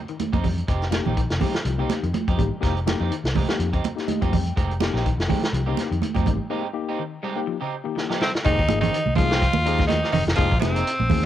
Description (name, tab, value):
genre	afrobeat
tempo	124 BPM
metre	4/4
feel	swing 56% on 16ths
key	F minor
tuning	A4 = 440 Hz
part	semi-hollow electric guitar	arpeggios	0.0-11.3 s	Db3 to Ab3	-34 LUFS	left 8 dB	cassette tape
part	vintage drum kit	drums	0.1-11.2 s	hi-hat, kick drum, snare drum	-25 LUFS	left 1 dB	cassette tape
part	congas	percussion	0.2-11.2 s	none	-27 LUFS	right 8 dB	none
part	electric guitar at the edge of break-up	stabs	0.3-10.9 s	Ab3 to G4	-32 LUFS	right 7 dB	wide subtle chorus, cassette tape
part	vintage muted fingered electric bass	bass	0.3-11.3 s	F1 to F2	-25 LUFS	left 1 dB	none
part	tine electric piano	accompaniment	0.9-11.3 s	Bb3 to G5	-30 LUFS	left 9 dB	overdrive, cassette tape
part	raspy tenor saxophone	melody	8.2-11.3 s	C4 to F4	-23 LUFS	left 1 dB	none
part	koto	second line	8.2-11.3 s	C3 to F3	-32 LUFS	right 7 dB	cassette tape
room	light reverb, small room ambience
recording	home recording on cassette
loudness	-20 LUFS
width	side -12 dB against mid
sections	0.0-8.4 A section; 8.4-11.3 B section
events	tine electric piano fill 3.8-4.6; break 6.5-8.4; drum fill 8.0-8.4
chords	0.0 Fm9